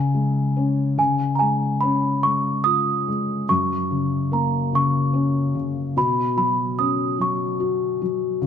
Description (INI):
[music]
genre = children's music, lullaby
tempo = 48 BPM (dotted quarters)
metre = 6/8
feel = straight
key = unclear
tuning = A4 = 440 Hz
[part]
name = celesta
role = melody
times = 0.0-8.5 s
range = G#5 to D#6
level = -22 LUFS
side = right 2 dB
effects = none
[part]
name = felt-muted upright piano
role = accompaniment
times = 0.0-8.5 s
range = F#2 to F#4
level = -21 LUFS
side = left 2 dB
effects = none
[sound]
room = wet scoring stage reverb, RT60 2.1 s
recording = none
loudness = -19 LUFS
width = side -8 dB against mid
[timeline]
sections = 0.0-8.5 A section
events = none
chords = 0.0 C#5; 1.0 C#; 3.5 F#; 6.0 Bsus2